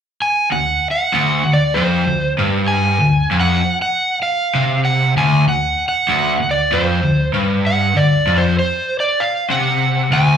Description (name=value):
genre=rock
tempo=97 BPM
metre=4/4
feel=straight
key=D mixolydian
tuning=A4 = 440 Hz
part: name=overdriven slide guitar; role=melody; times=0.2-10.4 s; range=C5 to G#5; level=-17 LUFS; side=right 2 dB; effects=slapback echo
part: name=overdriven electric guitar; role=riff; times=0.5-10.4 s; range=D2 to C3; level=-15 LUFS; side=left 1 dB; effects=slapback echo
room=little or no reverb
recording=live gig heard through the venue's PA, club reverb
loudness=-14 LUFS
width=side -8 dB against mid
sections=0.5-10.4 A section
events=none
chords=0.0 N.C.; 0.5 D